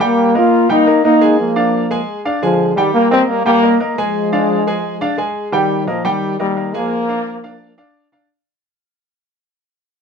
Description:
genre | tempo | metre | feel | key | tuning
latin | 174 BPM | 4/4 | straight | Eb major | A4 = 440 Hz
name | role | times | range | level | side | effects
warm trombone section | melody | 0.0-7.8 s | Bb2 to F4 | -14 LUFS | left 1 dB | none
clear grand piano | accompaniment | 0.0-8.3 s | G3 to Ab5 | -18 LUFS | right 1 dB | none
room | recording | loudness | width
moderate studio ambience, RT60 0.5 s | none | -13 LUFS | side -6 dB against mid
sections
0.0-5.5 A section; 5.5-8.3 B section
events
fade-out 5.5-8.3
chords
0.0 Eb; 1.4 Bb7; 2.8 Eb; 4.1 Fm6; 5.5 Eb; 6.9 Bb7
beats
| 0.01 0.35 0.70 1.04 | 1.39 1.73 2.08 2.42 | 2.77 3.11 3.46 3.80 | 4.15 4.49 4.84 5.18 | 5.53 5.87 6.22 6.56 | 6.91 7.25 7.60 7.95

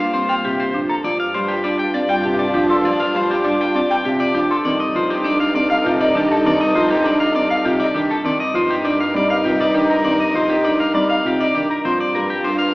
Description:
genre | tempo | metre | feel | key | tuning
classical, minimalist pattern music | 100 BPM | 3/4 | straight | unclear | A4 = 442 Hz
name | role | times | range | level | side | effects
electric guitar at the edge of break-up | melody | 0.0-12.7 s | G4 to G5 | -20 LUFS | left 1 dB | none
clear French horn | second line | 0.0-12.7 s | Eb4 to F4 | -22 LUFS | equal | none
warm symphonic string section | sustained chords | 0.0-12.7 s | Bb3 to Bb4 | -26 LUFS | equal | none
buzzing marimba with hard mallets | arpeggios | 0.0-12.6 s | C4 to G4 | -23 LUFS | right 1 dB | none
rich symphonic double bass section | bass | 0.0-12.7 s | G2 | -28 LUFS | equal | none
silver concert flute | arpeggios | 0.3-11.8 s | Eb5 to C6 | -24 LUFS | equal | none
warm concert grand piano | accompaniment | 0.4-12.3 s | C3 to G3 | -25 LUFS | equal | none
room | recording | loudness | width
wet recital hall reverb, RT60 1.6 s | recorded in a church or concert hall, small speaker sound | -15 LUFS | side -22 dB against mid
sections
0.0-12.7 A section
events
none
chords
0.0 Gm7; 1.0 Dm7/G; 4.6 F9/G; 8.2 Cm9/G; 11.8 Gm7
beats
0.45 | 1.05 1.65 2.25 | 2.85 3.45 4.05 | 4.65 5.25 5.85 | 6.45 7.05 7.65 | 8.25 8.85 9.45 | 10.05 10.65 11.25 | 11.85 12.45

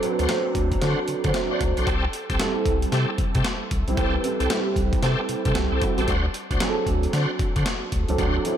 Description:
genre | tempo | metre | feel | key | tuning
R&B, new jack swing | 114 BPM | 4/4 | swing 63% on 16ths | A dorian | A4 = 437 Hz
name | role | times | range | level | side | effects
dark concert grand piano | accompaniment | 0.0-8.6 s | F#3 to E5 | -25 LUFS | right 3 dB | ensemble chorus
breakbeat sampler-style drum kit | drums | 0.0-8.6 s | hi-hat, kick drum, snare drum | -26 LUFS | equal | none
bright tonewheel organ | stabs | 0.2-8.4 s | C4 to C5 | -29 LUFS | left 1 dB | overdrive, chorus vibrato, fast rotary speaker, analog delay
round analog bass | bass | 0.2-8.4 s | A1 to D3 | -25 LUFS | equal | none
room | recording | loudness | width
moderate plate reverb, RT60 1.8 s | dreamy mix soaked in reverb | -21 LUFS | side -9 dB against mid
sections
0.0-8.6 A section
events
none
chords
0.0 D7; 1.9 Am7; 6.1 D7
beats
0.29 0.82 1.34 | 1.87 2.40 2.92 3.45 | 3.98 4.50 5.03 5.55 | 6.08 6.61 7.13 7.66 | 8.19

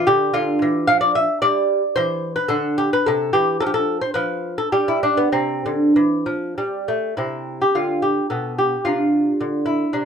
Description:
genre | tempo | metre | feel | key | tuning
classical, baroque-style dance for lute | 95-112 BPM | 3/4 | rubato | C major | A4 = 441 Hz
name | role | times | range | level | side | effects
lute | solo | 0.0-10.1 s | B2 to F5 | -17 LUFS | equal | none
room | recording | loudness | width
moderate studio ambience, RT60 0.5 s | none | -17 LUFS | side -7 dB against mid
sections
0.0-7.2 A section; 7.2-10.1 B section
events
none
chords
0.4 G5/D; 2.0 C; 3.6 N.C.; 5.3 C; 7.2 Am11; 8.9 Dm7/C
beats
| 0.35 0.89 1.43 | 1.97 2.51 3.06 | 3.61 4.16 4.73 | 5.34 5.96 6.57 | 7.18 7.76 8.32 | 8.86 9.41 9.95

